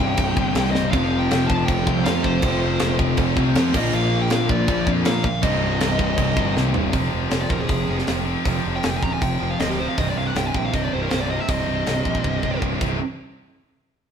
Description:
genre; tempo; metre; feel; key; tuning
heavy metal; 159 BPM; 4/4; straight; unclear; A4 = 437 Hz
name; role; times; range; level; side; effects
high-gain lead guitar; melody; 0.0-12.6 s; G4 to Bb5; -27 LUFS; equal; distortion
fuzz guitar; riff; 0.0-6.9 s; C2 to Bb4; -24 LUFS; left 2 dB; distortion
scooped high-gain guitar; riff; 0.0-13.0 s; C2 to Bb3; -27 LUFS; left 7 dB; distortion
fuzz picked electric bass; bass; 0.0-13.0 s; C1 to Bb2; -25 LUFS; equal; overdrive
tight metal drum kit; drums; 0.2-12.9 s; crash cymbal, hi-hat, kick drum, snare drum, toms; -25 LUFS; right 1 dB; none
heavy high-gain guitar; riff; 0.9-13.0 s; C2 to Bb3; -27 LUFS; right 7 dB; distortion
room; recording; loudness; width
moderate stone room reverb, RT60 1.3 s; band playing live in one room; -18 LUFS; side -8 dB against mid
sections
0.0-6.9 A section; 6.9-13.0 B section; 13.0-14.1 C section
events
drum fill 0.7, 6.6-6.9, 12.2-13.0; lead electric guitar solo 6.9-13.0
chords
0.0 Cm; 0.9 F; 3.7 Bb; 5.4 Cm; 6.9 F5; 10.0 Cm; 12.8 C5; 13.0 N.C.

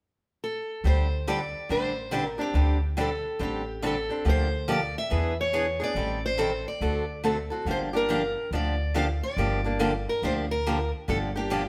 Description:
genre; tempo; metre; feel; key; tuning
acoustic string swing (jazz manouche); 141 BPM; 4/4; swing 63% on 8ths; G minor; A4 = 440 Hz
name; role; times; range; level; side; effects
picked steel-string acoustic guitar; melody; 0.4-11.7 s; G4 to F5; -32 LUFS; equal; none
picked steel-string acoustic guitar; accompaniment; 0.8-11.6 s; D3 to A4; -31 LUFS; equal; none
upright bass; bass; 0.8-11.7 s; G1 to E2; -31 LUFS; equal; none
room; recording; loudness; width
moderate stone room reverb, RT60 1.1 s; band playing live in one room; -27 LUFS; mono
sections
0.8-7.7 A section; 7.7-11.7 B section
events
none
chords
0.0 N.C.; 0.8 D7sus4; 4.3 Gm7/D; 5.1 E7; 6.0 Am7b5; 6.8 D7; 7.7 Gm7

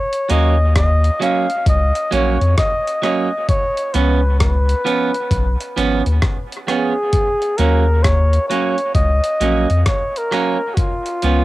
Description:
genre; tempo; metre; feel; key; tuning
dub reggae; 66 BPM; 4/4; swing 64% on 16ths; Eb minor; A4 = 439 Hz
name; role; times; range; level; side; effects
warm flugelhorn; melody; 0.0-11.4 s; F4 to F5; -20 LUFS; left 1 dB; cassette tape, dub echo
breakbeat sampler-style drum kit; drums; 0.1-11.4 s; hi-hat, kick drum, rim click; -20 LUFS; left 1 dB; none
clean electric guitar; accompaniment; 0.3-11.4 s; F3 to Db4; -21 LUFS; right 6 dB; cassette tape, dub echo
warm sub bass; bass; 0.3-11.4 s; Ab1 to F2; -15 LUFS; left 1 dB; none
room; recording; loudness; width
light reverb; home recording on cassette; -14 LUFS; side -17 dB against mid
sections
0.0-11.4 A section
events
none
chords
0.0 Ebm7; 3.5 Db7; 7.1 Ebm7; 10.8 Db7

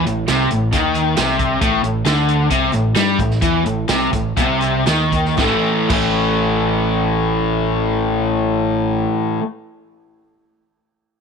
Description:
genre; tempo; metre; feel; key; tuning
classic rock; 116-136 BPM; 4/4; straight; A minor; A4 = 441 Hz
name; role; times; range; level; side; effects
overdriven electric guitar; riff; 0.0-9.4 s; A2 to A3; -19 LUFS; left 10 dB; none
overdriven semi-hollow guitar; riff; 0.0-9.4 s; A2 to A3; -21 LUFS; right 9 dB; none
raw garage guitar; riff; 0.0-9.4 s; A2 to A3; -23 LUFS; equal; overdrive
growling fingered electric bass; bass; 0.0-9.1 s; A1 to G2; -24 LUFS; equal; overdrive
vintage drum kit; drums; 0.1-6.0 s; crash cymbal, hi-hat, kick drum, snare drum, tambourine; -23 LUFS; right 3 dB; none
group handclap; percussion; 0.3-6.0 s; none; -35 LUFS; right 12 dB; none
room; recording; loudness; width
small room ambience; 1960s-style stereo with parts hard left and right; -15 LUFS; side -6 dB against mid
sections
0.0-5.4 A section; 5.4-9.5 B section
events
slowing down 1.6-5.4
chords
0.0 Am; 5.4 A5

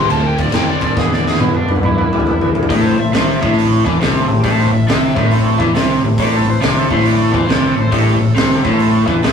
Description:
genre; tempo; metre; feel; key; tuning
blues rock power trio and southern rock; 138 BPM; 4/4; swing 66% on 8ths; A minor; A4 = 443 Hz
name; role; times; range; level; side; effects
overdriven slide guitar; melody; 0.0-9.2 s; D4 to C6; -22 LUFS; equal; none
overdriven tonewheel organ; sustained chords; 0.0-9.3 s; A3 to C5; -22 LUFS; right 2 dB; chorus vibrato, slow rotary speaker
vintage muted fingered electric bass; bass; 0.0-9.3 s; A1 to B2; -19 LUFS; equal; none
oversized low-tuned drum kit; drums; 0.1-9.3 s; crash cymbal, hi-hat, kick drum, snare drum, toms; -17 LUFS; equal; none
overdriven electric guitar; riff; 2.7-9.3 s; A2 to E3; -15 LUFS; left 1 dB; none
room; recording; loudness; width
wet small room reverb, RT60 0.5 s; rough rehearsal-room recording, tube saturation, small room ambience; -12 LUFS; side -7 dB against mid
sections
0.0-2.7 A section; 2.7-9.3 B section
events
electric slide guitar solo 0.0-2.7; drum fill 1.0-2.7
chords
0.1 Dm7; 1.0 E7; 2.7 Am

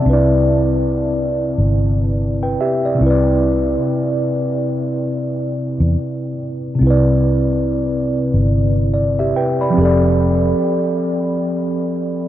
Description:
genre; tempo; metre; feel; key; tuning
lo-fi hip hop; 71 BPM; 4/4; swing 60% on 16ths; C major; A4 = 440 Hz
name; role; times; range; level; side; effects
mellow tine electric piano; accompaniment; 0.0-12.3 s; C3 to B5; -16 LUFS; equal; slow stereo tremolo, low-pass filter
vintage muted fingered electric bass; bass; 0.1-10.5 s; F1 to E2; -17 LUFS; equal; none
room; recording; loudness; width
moderate huge ambient reverb, RT60 8.6 s; dreamy mix soaked in reverb, cassette tape; -15 LUFS; side -12 dB against mid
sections
0.0-6.8 A section; 6.8-12.3 A section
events
none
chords
0.1 Cmaj9; 3.0 Cmaj7; 6.8 Cmaj9; 9.8 F69

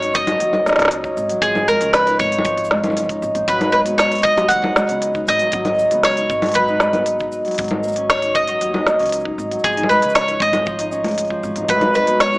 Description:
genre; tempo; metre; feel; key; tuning
folktronica; 117 BPM; 4/4; straight; G# dorian; A4 = 438 Hz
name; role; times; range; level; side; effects
bowl-back mandolin; melody; 0.0-12.4 s; G#4 to F#5; -17 LUFS; equal; digital delay
Celtic harp; arpeggios; 0.0-12.4 s; E#3 to D#4; -20 LUFS; equal; digital delay
upright bass; bass; 0.0-12.4 s; G#1 to D#2; -30 LUFS; equal; tube saturation
organic electronic drum kit; drums; 0.0-12.4 s; congas, hi-hat, shaker, snare drum; -20 LUFS; equal; none
kick drum; drums; 0.1-11.8 s; none; -27 LUFS; equal; none
room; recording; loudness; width
light reverb, small room ambience; small speaker sound; -15 LUFS; side -22 dB against mid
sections
0.0-12.4 A section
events
none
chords
0.0 D#m7/G#; 1.4 C#add9/G#; 3.5 G#m7; 9.6 C#add9/G#; 11.7 G#m7

